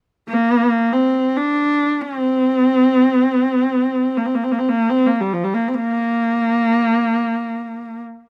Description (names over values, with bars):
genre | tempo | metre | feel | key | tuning
mongolian traditional | 69 BPM | 4/4 | straight | Bb gong mode | A4 = 438 Hz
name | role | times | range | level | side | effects
rich horsehead fiddle | solo | 0.3-8.0 s | F3 to D4 | -18 LUFS | equal | none
room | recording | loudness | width
little or no reverb | recorded outdoors, with no room sound | -18 LUFS | mono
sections
0.0-8.3 A section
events
none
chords
none